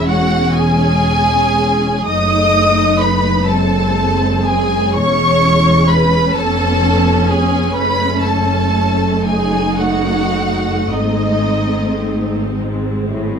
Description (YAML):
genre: classical, slow romantic movement for string orchestra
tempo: 35-44 BPM (dotted quarters)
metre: 6/8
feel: rubato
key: C# minor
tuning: A4 = 439 Hz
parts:
  - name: warm symphonic violin section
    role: melody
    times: 0.0-12.6 s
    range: D#5 to D#6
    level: -18 LUFS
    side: equal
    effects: none
  - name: warm symphonic violin section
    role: second line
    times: 0.0-12.6 s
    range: D#4 to D#5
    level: -19 LUFS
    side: left 1 dB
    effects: none
  - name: warm symphonic viola section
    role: accompaniment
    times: 0.0-13.4 s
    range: G#3 to D#4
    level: -19 LUFS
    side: right 1 dB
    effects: none
  - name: rich studio double bass section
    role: bass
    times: 0.0-13.4 s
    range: E1 to G#1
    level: -21 LUFS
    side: right 1 dB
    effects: none
  - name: rich symphonic cello section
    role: bass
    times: 0.0-13.4 s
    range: E2 to A2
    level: -19 LUFS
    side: left 1 dB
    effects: none
room: light reverb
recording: close, detailed microphones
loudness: -12 LUFS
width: side -7 dB against mid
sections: 0.0-13.4 A section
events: none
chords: 0.0 C#m/E; 2.1 D#dim/F#; 3.5 G#7/F#; 5.0 C#m/E; 6.4 C#7/E#; 7.8 F#m; 9.3 D#dim/F#; 10.9 G#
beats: 0.57 | 2.09 3.48 | 4.95 6.35 | 7.75 9.27 | 10.92 12.58